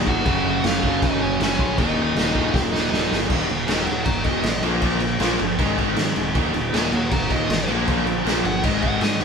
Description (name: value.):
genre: punk rock.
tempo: 157 BPM.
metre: 4/4.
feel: straight.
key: unclear.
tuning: A4 = 441 Hz.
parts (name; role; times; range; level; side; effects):
distorted electric guitar; riff; 0.0-9.2 s; Eb2 to Bb3; -26 LUFS; right 9 dB; overdrive.
heavy high-gain guitar; riff; 0.0-9.2 s; Eb2 to Bb3; -28 LUFS; right 1 dB; distortion.
raw garage guitar; riff; 0.0-9.2 s; Eb2 to Bb3; -26 LUFS; left 7 dB; overdrive.
growling picked electric bass; bass; 0.0-9.2 s; Eb1 to Ab2; -29 LUFS; equal; overdrive.
dark smooth lead guitar; melody; 0.1-9.2 s; Db4 to Bb5; -26 LUFS; equal; overdrive.
raw garage drum kit; drums; 0.1-9.2 s; crash cymbal, kick drum, snare drum; -23 LUFS; equal; none.
room: moderate studio reverb, RT60 0.5 s.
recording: band playing live in one room.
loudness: -18 LUFS.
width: side -6 dB against mid.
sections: 0.0-3.3 A section; 3.3-9.2 B section.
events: drum fill 2.5-3.3; lead electric guitar solo 3.3-9.2.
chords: 0.3 Gb5; 1.8 Eb5; 3.3 Eb; 4.6 Bb5; 5.6 Ab5; 6.4 Eb; 7.7 Bb5; 8.6 Ab5.